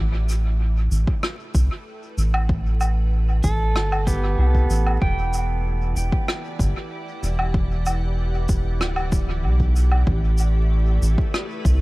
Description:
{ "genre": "ambient dub", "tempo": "95 BPM", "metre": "4/4", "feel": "straight", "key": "unclear", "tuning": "A4 = 436 Hz", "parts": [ { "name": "soft additive organ-like pad", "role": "sustained chords", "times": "0.0-11.8 s", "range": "E3 to G5", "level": "-35 LUFS", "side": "left 1 dB", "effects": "ensemble chorus, built-in reverb" }, { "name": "round analog bass", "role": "bass", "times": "0.0-11.8 s", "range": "D1 to C2", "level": "-19 LUFS", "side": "equal", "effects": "tube saturation" }, { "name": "shaker, rim click and woodblock", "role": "drums", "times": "0.3-11.8 s", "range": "none", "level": "-29 LUFS", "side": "equal", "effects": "dub echo" }, { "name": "electronic kick drum", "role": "drums", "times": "1.1-11.8 s", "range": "none", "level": "-23 LUFS", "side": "equal", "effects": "overdrive" }, { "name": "pedal steel guitar", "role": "arpeggios", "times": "3.4-6.6 s", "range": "B3 to G5", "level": "-28 LUFS", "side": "right 2 dB", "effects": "tape echo" } ], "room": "small room reverb", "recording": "vinyl crackle", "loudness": "-19 LUFS", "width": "side -21 dB against mid", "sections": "0.0-11.8 A section", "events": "fade-in on ambient pad 0.0-11.8", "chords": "0.0 A7(no3); 5.0 Em7; 10.1 A7(no3)", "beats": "0.60 1.23 1.86 | 2.49 3.12 3.76 4.39 | 5.02 5.65 6.28 6.91 | 7.54 8.18 8.81 9.44 | 10.07 10.70 11.34" }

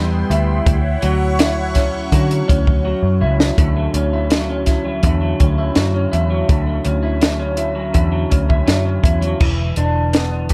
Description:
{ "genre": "indie pop, bedroom pop", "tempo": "82 BPM", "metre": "4/4", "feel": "straight", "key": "D major", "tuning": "A4 = 444 Hz", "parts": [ { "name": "electric guitar through a small old amp", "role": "accompaniment", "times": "0.0-10.5 s", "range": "C3 to G4", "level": "-23 LUFS", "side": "equal", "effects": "analog chorus, warbly pitch drift" }, { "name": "phased analog pad", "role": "sustained chords", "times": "0.0-3.5 s", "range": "B3 to C#6", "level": "-28 LUFS", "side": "equal", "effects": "phaser, chorus" }, { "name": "vintage muted picked electric bass", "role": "bass", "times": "0.0-10.5 s", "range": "E1 to D3", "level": "-21 LUFS", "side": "equal", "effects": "none" }, { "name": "compact cocktail drum kit", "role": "drums", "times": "0.3-10.5 s", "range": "crash cymbal, hi-hat, kick drum, snare drum", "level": "-19 LUFS", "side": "equal", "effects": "none" } ], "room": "light reverb", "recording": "none", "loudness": "-17 LUFS", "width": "mono", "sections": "0.0-3.6 A section; 3.6-9.4 B section; 9.4-10.5 C section", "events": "drum fill 2.8-3.6", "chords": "0.0 Cmaj7; 0.7 Dmaj9; 9.4 E7(no3)", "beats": "| 0.67 1.39 2.12 2.85 | 3.58 4.30 5.03 5.76 | 6.49 7.22 7.95 8.68 | 9.41 10.14" }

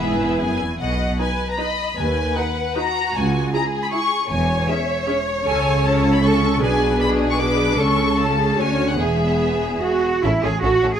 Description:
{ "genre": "quick classical-period movement for string orchestra", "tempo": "154 BPM", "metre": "3/4", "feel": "rubato", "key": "B major, A major from 5.5 s", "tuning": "A4 = 440 Hz", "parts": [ { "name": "rich symphonic violin section", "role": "melody", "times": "0.0-10.9 s", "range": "E5 to D6", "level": "-24 LUFS", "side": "left 4 dB", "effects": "none" }, { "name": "rich symphonic violin section", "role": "second line", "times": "0.0-10.9 s", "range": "F#4 to D#5", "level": "-25 LUFS", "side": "left 1 dB", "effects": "none" }, { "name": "rich symphonic viola section", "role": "accompaniment", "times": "0.0-10.9 s", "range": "B3 to B4", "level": "-24 LUFS", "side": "equal", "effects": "none" }, { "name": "rich symphonic cello section", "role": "bass", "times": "0.0-11.0 s", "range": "C#2 to G#4", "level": "-23 LUFS", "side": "right 2 dB", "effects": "none" }, { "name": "rich symphonic double bass section", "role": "bass", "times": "0.0-10.9 s", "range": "E1 to D#2", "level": "-24 LUFS", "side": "right 2 dB", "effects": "none" } ], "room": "moderate recital hall reverb, RT60 1.8 s", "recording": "close, detailed microphones", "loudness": "-17 LUFS", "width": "side -8 dB against mid", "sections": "0.8-10.2 A section", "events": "none", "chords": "0.0 E; 0.8 B; 2.0 B/D#; 3.1 C#m; 4.3 C#m/E; 5.5 A/C#; 6.6 G#dim/B; 7.8 A/C#; 8.6 Dmaj7; 9.0 E; 10.2 A", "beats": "0.39 | 0.80 1.19 1.58 | 1.98 2.37 2.76 | 3.15 3.53 3.92 | 4.30 4.69 5.07 | 5.46 5.85 6.24 | 6.62 7.01 7.40 | 7.79 8.18 8.58 | 8.99 9.41 9.82 | 10.23 10.63" }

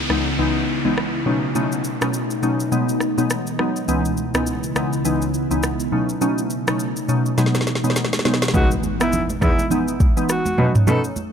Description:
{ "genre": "afrobeats", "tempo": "103 BPM", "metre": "4/4", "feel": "swing 58% on 16ths", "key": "C# minor", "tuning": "A4 = 441 Hz", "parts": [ { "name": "ethereal airy pad", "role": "sustained chords", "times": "0.0-8.5 s", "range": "B2 to E4", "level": "-26 LUFS", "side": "equal", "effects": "ensemble chorus, built-in reverb" }, { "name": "downlifter and impact", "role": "sound effects", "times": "0.0-3.9, 8.7-10.9 s", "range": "none", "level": "-30 LUFS", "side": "equal", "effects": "none" }, { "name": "glassy wavetable pluck", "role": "accompaniment", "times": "0.1-11.1 s", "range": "C#2 to D#4", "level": "-21 LUFS", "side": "left 1 dB", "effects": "chorus" }, { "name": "afro-pop drum kit", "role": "drums", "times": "0.1-11.3 s", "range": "kick drum, rim click, shaker, snare drum, toms", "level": "-22 LUFS", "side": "equal", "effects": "none" }, { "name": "muted cello", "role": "bass", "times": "8.5-11.0 s", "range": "C#2 to B2", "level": "-20 LUFS", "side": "equal", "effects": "none" }, { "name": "congas", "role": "percussion", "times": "8.5-11.3 s", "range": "none", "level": "-28 LUFS", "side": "right 3 dB", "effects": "none" }, { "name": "breathy alto saxophone", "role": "melody", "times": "8.6-11.0 s", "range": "E4 to A4", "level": "-24 LUFS", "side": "equal", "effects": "digital delay" } ], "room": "light reverb, small room ambience", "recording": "none", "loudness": "-18 LUFS", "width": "side -8 dB against mid", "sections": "0.0-8.5 A section; 8.5-11.3 B section", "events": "drum fill 7.4-8.5; impact 8.5-10.9", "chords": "0.0 C#m7; 1.3 B7; 2.7 Emaj9/B; 3.9 C#m7; 5.9 B7; 7.4 Emaj9/B; 8.5 C#m7 (rootless); 10.6 B7 (rootless)", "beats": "0.39 0.97 | 1.55 2.14 2.72 3.30 | 3.88 4.47 5.05 5.63 | 6.21 6.80 7.38 7.96 | 8.54 9.13 9.71 10.29 | 10.87" }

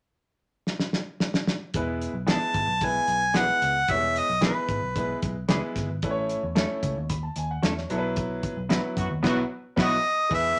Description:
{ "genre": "uptempo 1960s-style soul", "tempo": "112 BPM", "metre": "4/4", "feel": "straight", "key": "E major", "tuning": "A4 = 441 Hz", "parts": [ { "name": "cloth-damped thuddy drum kit", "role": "drums", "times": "0.7-10.4 s", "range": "crash cymbal, hi-hat, kick drum, snare drum", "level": "-29 LUFS", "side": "equal", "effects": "none" }, { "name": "vintage muted picked electric bass", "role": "bass", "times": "1.7-10.6 s", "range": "E1 to F#2", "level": "-35 LUFS", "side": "equal", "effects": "none" }, { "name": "clear concert grand piano", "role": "accompaniment", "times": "1.8-10.6 s", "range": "F#3 to B5", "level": "-33 LUFS", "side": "equal", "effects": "none" }, { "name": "clear harmonica", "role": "melody", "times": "2.3-5.2, 9.8-10.6 s", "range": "B4 to A5", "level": "-26 LUFS", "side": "equal", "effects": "none" }, { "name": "semi-hollow electric guitar", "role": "stabs", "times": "2.3-10.0 s", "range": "E3 to B4", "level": "-32 LUFS", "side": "equal", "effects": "none" }, { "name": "clear horn section", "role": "second line", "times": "9.0-10.6 s", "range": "E3 to G#4", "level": "-36 LUFS", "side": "equal", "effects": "none" } ], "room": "wet studio reverb, RT60 0.6 s", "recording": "none", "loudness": "-26 LUFS", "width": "mono", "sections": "0.0-1.7 A section; 1.7-10.3 B section", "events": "drum fill 0.7-1.7; band accent 8.2-10.3", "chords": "0.0 N.C.; 1.7 E; 6.0 A; 7.9 Bsus4", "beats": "0.13 0.67 1.21 | 1.74 2.28 2.81 3.35 | 3.89 4.42 4.96 5.49 | 6.03 6.56 7.10 7.64 | 8.17 8.71 9.24 9.78 | 10.31" }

